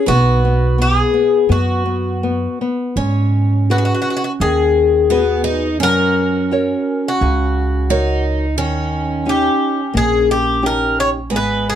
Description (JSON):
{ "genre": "fado-style ballad", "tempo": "85 BPM", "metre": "4/4", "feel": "uneven beats, rubato", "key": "G# minor", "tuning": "A4 = 440 Hz", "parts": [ { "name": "Irish bouzouki", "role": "melody", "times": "0.0-11.8 s", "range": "F#4 to C#5", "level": "-17 LUFS", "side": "left 4 dB", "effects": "none" }, { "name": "picked twelve-string acoustic guitar", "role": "second line", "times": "0.0-11.8 s", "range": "B3 to D#4", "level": "-22 LUFS", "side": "right 5 dB", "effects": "none" }, { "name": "nylon-string guitar", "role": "accompaniment", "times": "0.0-11.8 s", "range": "C#3 to C#5", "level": "-22 LUFS", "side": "left 2 dB", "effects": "none" }, { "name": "upright bass", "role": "bass", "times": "0.1-11.8 s", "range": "G#1 to G#2", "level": "-18 LUFS", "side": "right 1 dB", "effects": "none" } ], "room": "light reverb", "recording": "dark, warm production", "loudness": "-14 LUFS", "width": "side -10 dB against mid", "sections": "0.0-3.0 A section; 3.0-11.8 B section", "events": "none", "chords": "0.1 B5; 3.0 G#m7; 5.8 F#; 8.6 D#7", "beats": "| 0.08 0.78 1.49 2.23 | 2.97 3.69 4.41 5.11 | 5.82 6.52 7.21 7.91 | 8.59 9.26 9.94 10.62 | 11.31" }